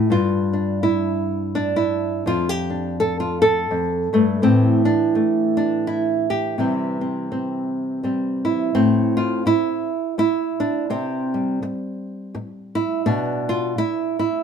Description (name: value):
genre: folk, solo fingerstyle acoustic guitar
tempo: 83 BPM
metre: 3/4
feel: swing 59% on 8ths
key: unclear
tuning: A4 = 440 Hz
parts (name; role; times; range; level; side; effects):
- nylon-string guitar; solo; 0.0-14.4 s; F2 to A4; -19 LUFS; equal; none
room: light reverb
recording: band playing live in one room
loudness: -18 LUFS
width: side -7 dB against mid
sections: 0.0-8.7 A section; 8.7-14.4 B section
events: none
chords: 0.1 G5; 2.3 Dm/F; 4.4 A5; 6.6 C; 8.7 Am; 10.9 C5; 13.1 G/B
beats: | 0.10 0.82 1.54 | 2.26 2.98 3.71 | 4.43 5.15 5.87 | 6.59 7.31 8.03 | 8.75 9.47 10.19 | 10.91 11.63 12.34 | 13.06 13.78